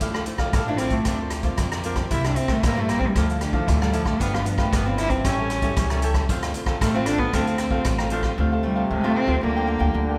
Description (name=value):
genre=samba and choro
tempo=115 BPM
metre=4/4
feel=straight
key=D minor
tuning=A4 = 440 Hz
part: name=cavaquinho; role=accompaniment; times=0.0-10.2 s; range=D4 to G5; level=-32 LUFS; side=equal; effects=none
part: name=nylon-string guitar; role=accompaniment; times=0.0-10.2 s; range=G2 to F4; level=-33 LUFS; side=equal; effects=none
part: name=upright bass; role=bass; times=0.0-10.2 s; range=G1 to F2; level=-28 LUFS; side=equal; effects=none
part: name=swinging big-band drum kit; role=drums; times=0.0-8.4 s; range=hi-hat, kick drum, rim click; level=-28 LUFS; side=equal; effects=none
part: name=dark cello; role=melody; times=0.7-10.2 s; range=A2 to E4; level=-28 LUFS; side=equal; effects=none
part: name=warm trombone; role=second line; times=8.4-10.2 s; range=C3 to D3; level=-31 LUFS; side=equal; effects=none
room=moderate scoring stage reverb, RT60 1.8 s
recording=recorded in a church or concert hall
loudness=-23 LUFS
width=mono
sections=0.0-8.4 A section; 8.4-10.2 B section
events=cello solo 0.0-8.4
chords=0.0 Dmadd9; 1.1 Bbadd9/D; 2.1 C7; 3.2 Dmadd9; 4.2 G7; 5.2 A7; 6.3 Dm7; 9.4 Gm7/D